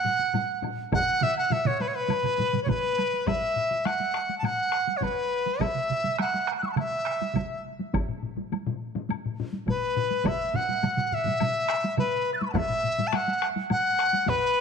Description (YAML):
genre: japanese traditional, taiko drum ensemble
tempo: 103 BPM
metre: 4/4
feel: straight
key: B suspended pentatonic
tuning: A4 = 440 Hz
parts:
  - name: bright reedy dizi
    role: melody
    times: 0.0-14.6 s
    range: B4 to A6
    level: -25 LUFS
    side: equal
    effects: none
  - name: taiko ensemble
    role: percussion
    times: 0.0-14.4 s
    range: none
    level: -34 LUFS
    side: left 7 dB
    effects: none
  - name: taiko ensemble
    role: percussion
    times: 0.1-14.4 s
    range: none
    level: -33 LUFS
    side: right 1 dB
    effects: none
  - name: woodblock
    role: percussion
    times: 0.3-14.4 s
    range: none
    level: -40 LUFS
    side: left 14 dB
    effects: none
  - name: taiko ensemble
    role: percussion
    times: 0.9-12.1 s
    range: none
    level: -32 LUFS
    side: right 9 dB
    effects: none
  - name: taiko ensemble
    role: percussion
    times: 0.9-14.4 s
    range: none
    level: -32 LUFS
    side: right 1 dB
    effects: none
room: moderate echo chamber reverb, RT60 1.9 s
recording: 1960s-style stereo with parts hard left and right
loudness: -24 LUFS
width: side -6 dB against mid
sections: 0.0-3.3 A section; 3.3-14.6 B section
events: none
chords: none